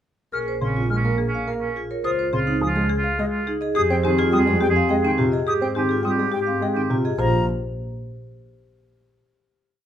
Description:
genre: classical, minimalist pattern music.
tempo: 105 BPM.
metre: 3/4.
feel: straight.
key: Bb dorian.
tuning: A4 = 441 Hz.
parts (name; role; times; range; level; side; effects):
marimba with medium hard mallets; melody; 0.3-7.5 s; G4 to Ab5; -26 LUFS; left 7 dB; none.
clear oboe; second line; 0.3-7.0 s; Db4 to Ab4; -27 LUFS; right 4 dB; none.
silver concert flute; arpeggios; 0.3-7.5 s; Eb5 to F6; -28 LUFS; left 1 dB; none.
vibraphone with medium hard mallets; arpeggios; 0.3-7.5 s; C4 to C5; -25 LUFS; right 3 dB; none.
dark studio double bass section; bass; 0.3-7.5 s; Bb1 to Ab2; -26 LUFS; right 2 dB; none.
warm concert grand piano; accompaniment; 0.6-7.5 s; C3 to C4; -26 LUFS; equal; none.
room: light reverb.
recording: none.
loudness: -19 LUFS.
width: side -10 dB against mid.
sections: 0.3-7.2 A section; 7.2-8.9 final chord.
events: none.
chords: 0.3 Bbm7; 2.0 Dbmaj7; 3.8 Fm7; 5.5 Abmaj7; 7.2 Bb5.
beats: | 0.33 0.90 1.47 | 2.04 2.62 3.19 | 3.76 4.33 4.90 | 5.47 6.04 6.62 | 7.19.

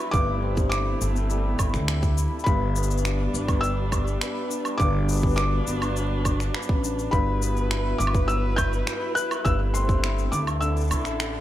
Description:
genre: folktronica.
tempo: 103 BPM.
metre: 4/4.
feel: straight.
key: unclear.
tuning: A4 = 440 Hz.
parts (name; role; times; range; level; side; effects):
warm string quartet; sustained chords; 0.0-11.4 s; D3 to B4; -34 LUFS; right 2 dB; stereo widening.
cimbalom; arpeggios; 0.0-11.4 s; G2 to B4; -30 LUFS; left 2 dB; digital delay.
felt-muted upright piano; melody; 0.1-11.4 s; B5 to G6; -29 LUFS; left 1 dB; digital delay.
upright bass; bass; 0.1-11.4 s; G1 to D2; -25 LUFS; equal; none.
electronic cabasa, finger snaps and woodblock; drums; 0.1-11.3 s; none; -32 LUFS; right 1 dB; none.
electronic kick drum; drums; 0.1-10.0 s; none; -24 LUFS; equal; none.
room: small room ambience.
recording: none.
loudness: -22 LUFS.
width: side -13 dB against mid.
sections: 0.0-11.4 A section.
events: kick drops out 10.6-11.4.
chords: 0.1 C6/G; 4.8 Bm/G; 7.1 Emadd9/G; 9.5 C6/G; 10.6 Dsus2.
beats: | 0.14 0.72 1.30 1.88 | 2.47 3.05 3.63 4.21 | 4.80 5.38 5.96 6.54 | 7.13 7.71 8.29 8.87 | 9.46 10.04 10.62 11.20.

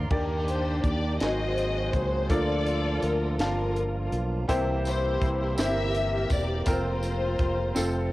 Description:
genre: slow gospel.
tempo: 55 BPM (dotted quarters).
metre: 6/8.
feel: straight.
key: Bb major.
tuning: A4 = 440 Hz.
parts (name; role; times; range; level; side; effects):
bright baby grand piano; accompaniment; 0.0-8.1 s; Ab2 to Bb5; -32 LUFS; equal; cassette tape.
tonewheel organ; sustained chords; 0.0-8.1 s; Eb3 to Bb4; -34 LUFS; right 2 dB; overdrive, stopped rotary speaker, cassette tape.
modern bright fingered electric bass; bass; 0.0-8.1 s; E1 to Eb2; -29 LUFS; equal; none.
dark studio string section; melody; 0.1-8.1 s; D4 to E5; -30 LUFS; left 2 dB; cassette tape.
crisp fusion drum kit; drums; 0.1-7.9 s; crash cymbal, hi-hat, kick drum, snare drum; -30 LUFS; equal; cassette tape.
tambourine; percussion; 4.5-8.1 s; none; -42 LUFS; right 3 dB; none.
room: light reverb.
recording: home recording on cassette.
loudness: -24 LUFS.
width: side -17 dB against mid.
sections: 0.1-8.1 A section.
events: drum fill 7.8-8.1.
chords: 0.1 Ebmaj7; 1.2 Ab9; 2.3 Bbmaj7/D; 4.5 C7; 6.7 Fsus4.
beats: | 0.11 1.20 | 2.30 3.39 | 4.48 5.58 | 6.67 7.76.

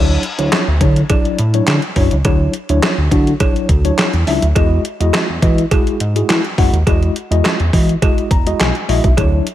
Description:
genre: early-eighties boogie funk.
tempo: 104 BPM.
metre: 4/4.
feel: straight.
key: unclear.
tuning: A4 = 440 Hz.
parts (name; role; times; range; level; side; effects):
mellow tine electric piano; accompaniment; 0.0-9.4 s; F#3 to Bb5; -19 LUFS; left 2 dB; medium stereo tremolo.
chorused synth bass; bass; 0.0-9.4 s; Bb1 to E3; -15 LUFS; equal; none.
crisp 8-bit digital drum machine; drums; 0.2-9.5 s; handclaps, hi-hat, kick drum, snare drum; -16 LUFS; equal; gated reverb.
cowbell; percussion; 0.5-9.3 s; none; -26 LUFS; right 6 dB; none.
room: digital ambience.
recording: none.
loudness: -12 LUFS.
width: side -13 dB against mid.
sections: 0.0-9.5 A section.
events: tine electric piano fill 8.0-9.2.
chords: 0.0 Dmaj9; 4.6 Emaj9.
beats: 0.52 1.10 1.68 | 2.25 2.83 3.41 3.98 | 4.56 5.14 5.71 6.29 | 6.87 7.45 8.02 8.60 | 9.18.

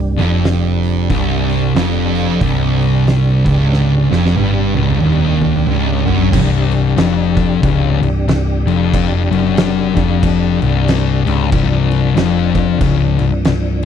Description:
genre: stoner and doom metal.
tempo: 92 BPM.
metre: 4/4.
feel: swing 60% on 8ths.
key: C minor.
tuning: A4 = 440 Hz.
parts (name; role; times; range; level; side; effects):
tonewheel organ; sustained chords; 0.0-13.8 s; C3 to G4; -24 LUFS; right 3 dB; slow rotary speaker, overdrive, chorus vibrato.
thick fuzz guitar; riff; 0.0-13.8 s; C2 to G2; -16 LUFS; left 9 dB; distortion.
thick fuzz guitar; riff; 0.0-6.3 s; C2 to G2; -16 LUFS; right 9 dB; distortion.
hollow-body short-scale picked electric bass; bass; 0.0-13.8 s; C1 to G1; -18 LUFS; equal; overdrive.
oversized low-tuned drum kit; drums; 0.2-13.8 s; crash cymbal, hi-hat, kick drum, snare drum, toms; -20 LUFS; right 1 dB; none.
room: little or no reverb.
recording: dry, close 1970s-style studio recording.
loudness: -12 LUFS.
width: side -8 dB against mid.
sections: 0.0-6.3 A section; 6.3-13.8 B section.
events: drum fill 3.7-6.3.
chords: 0.0 Cm; 6.3 C5.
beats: 0.45 | 1.11 1.76 2.42 3.07 | 3.72 4.38 5.03 5.68 | 6.33 6.99 7.63 8.28 | 8.93 9.58 10.23 10.87 | 11.52 12.16 12.81 13.46.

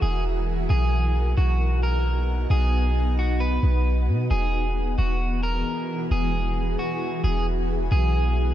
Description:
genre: hip hop.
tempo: 133 BPM.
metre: 4/4.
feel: half-time.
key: E lydian.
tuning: A4 = 440 Hz.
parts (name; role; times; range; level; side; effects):
electric guitar at the edge of break-up; melody; 0.0-8.5 s; F#4 to B4; -30 LUFS; right 1 dB; low-pass filter, ping-pong delay.
granular cloud pad; sustained chords; 0.0-8.5 s; E3 to A#4; -28 LUFS; equal; built-in reverb.
warm 808-style bass; bass; 0.0-8.5 s; E1 to B2; -22 LUFS; equal; none.
room: little or no reverb.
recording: dark, warm production.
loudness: -21 LUFS.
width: side -12 dB against mid.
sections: 0.0-8.5 A section.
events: none.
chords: 0.0 Eadd9; 0.7 B; 4.3 Eadd9; 7.9 B.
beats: 0.25 | 0.70 1.15 1.60 2.05 | 2.50 2.95 3.40 3.86 | 4.31 4.76 5.21 5.66 | 6.11 6.56 7.01 7.46 | 7.92 8.37.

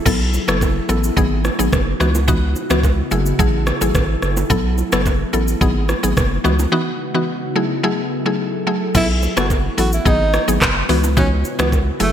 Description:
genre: afrobeats.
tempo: 108 BPM.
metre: 4/4.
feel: straight.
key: C# minor.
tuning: A4 = 440 Hz.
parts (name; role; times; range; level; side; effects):
glassy FM pad; sustained chords; 0.0-12.1 s; C#3 to A4; -25 LUFS; equal; ensemble chorus, built-in reverb, sidechain pumping.
mallet-like synth pluck; accompaniment; 0.1-12.1 s; E3 to A4; -20 LUFS; left 1 dB; chorus.
saturated sub bass; bass; 0.1-12.1 s; F#1 to C#2; -19 LUFS; equal; none.
afro-pop drum kit; drums; 0.1-12.1 s; crash cymbal, handclaps, hi-hat, kick drum, rim click, shaker; -20 LUFS; equal; gated reverb.
congas and bongos; percussion; 0.1-11.9 s; none; -28 LUFS; right 5 dB; none.
breathy tenor saxophone; melody; 9.0-12.1 s; A3 to F#4; -22 LUFS; right 1 dB; ping-pong delay.
room: light reverb.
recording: bright 1980s-style digital production.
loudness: -15 LUFS.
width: side -9 dB against mid.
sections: 0.1-8.9 A section; 8.9-12.1 B section.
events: break 6.7-8.9.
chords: 0.1 B7sus4; 1.2 G#m7; 2.0 C#m11; 3.1 F#m9; 4.5 B7sus4; 5.6 G#m7; 6.5 C#m11; 7.6 F#m9; 8.9 B7sus4; 10.1 G#m7; 10.9 C#m11.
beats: | 0.06 0.62 1.17 1.73 | 2.28 2.84 3.39 3.95 | 4.50 5.06 5.62 6.17 | 6.73 7.28 7.84 8.39 | 8.95 9.51 10.06 10.62 | 11.17 11.73.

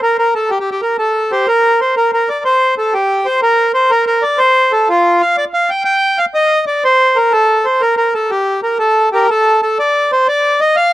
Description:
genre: celtic folk.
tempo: 123 BPM (dotted quarters).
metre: 6/8.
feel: straight.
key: G minor.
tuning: A4 = 439 Hz.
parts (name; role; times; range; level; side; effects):
accordion; solo; 0.0-10.9 s; F4 to G5; -11 LUFS; equal; slapback echo.
room: little or no reverb.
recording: recorded outdoors, with no room sound.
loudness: -11 LUFS.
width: side -15 dB against mid.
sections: 0.0-1.5 A section; 1.5-9.3 A section; 9.3-10.9 B section.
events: none.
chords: none.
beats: 0.00 | 0.49 0.98 | 1.46 1.95 | 2.44 2.93 | 3.41 3.90 | 4.39 4.88 | 5.37 5.86 | 6.34 6.83 | 7.32 7.81 | 8.30 8.79 | 9.28 9.77 | 10.26 10.74.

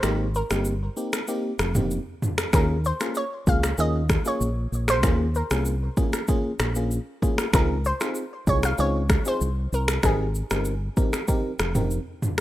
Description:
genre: afrobeats.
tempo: 96 BPM.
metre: 4/4.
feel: straight.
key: Ab major.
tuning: A4 = 440 Hz.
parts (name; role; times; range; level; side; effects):
analog pluck; melody; 0.0-11.3 s; Ab4 to F5; -28 LUFS; equal; chorus, digital delay.
FM electric piano; accompaniment; 0.0-12.0 s; Bb3 to Bb4; -29 LUFS; equal; chorus.
fingered electric bass; bass; 0.0-12.0 s; F1 to Eb2; -25 LUFS; equal; none.
deep house drum kit; drums; 0.0-12.4 s; finger snaps, kick drum, rim click, shaker, toms; -24 LUFS; equal; overdrive.
room: little or no reverb.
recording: rough home demo mix.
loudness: -22 LUFS.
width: side -15 dB against mid.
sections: 0.0-12.4 A section.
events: break 0.0-2.5.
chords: 0.0 Abmaj7; 2.5 Eb7sus4; 7.5 Dbmaj7; 10.0 Abmaj7.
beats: | 0.03 0.66 1.28 1.91 | 2.53 3.16 3.78 4.41 | 5.03 5.66 6.28 6.91 | 7.53 8.16 8.78 9.41 | 10.03 10.66 11.28 11.91.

